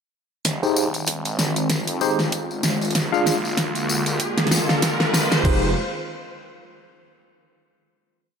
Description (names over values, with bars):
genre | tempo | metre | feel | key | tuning
glitch hop | 96 BPM | 4/4 | swing 57% on 16ths | F dorian | A4 = 441 Hz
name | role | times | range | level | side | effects
tambourine | percussion | 0.4-5.4 s | none | -29 LUFS | left 4 dB | none
warm analog pad | sustained chords | 0.5-5.7 s | D3 to F4 | -27 LUFS | equal | chorus, vintage 12-bit sampler grit, sidechain pumping
phased detuned saw bass | bass | 0.5-5.7 s | Eb1 to F2 | -28 LUFS | equal | phaser, overdrive, high-pass filter
dubstep drum kit | drums | 0.5-5.6 s | crash cymbal, hi-hat, snare drum | -23 LUFS | equal | overdrive
electronic kick drum | drums | 0.5-5.6 s | none | -24 LUFS | equal | overdrive, high-pass filter on kick, high-pass filter on room
riser | sound effects | 2.4-5.5 s | none | -28 LUFS | right 1 dB | none
tine electric piano | stabs | 0.6-5.7 s | D4 to F5 | -24 LUFS | left 1 dB | medium stereo tremolo, sidechain pumping, low-pass filter, tape echo
room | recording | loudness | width
light reverb | none | -19 LUFS | side -6 dB against mid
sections
0.5-5.5 build; 5.5-8.0 final chord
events
build-up 0.5-5.5; drum fill 0.5-5.5; filter sweep on tine electric piano 0.5-5.5; filter sweep on analog synth pad 0.5-5.5; riser 2.4-5.5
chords
0.5 Fm7; 3.0 Bb7; 5.5 Fm7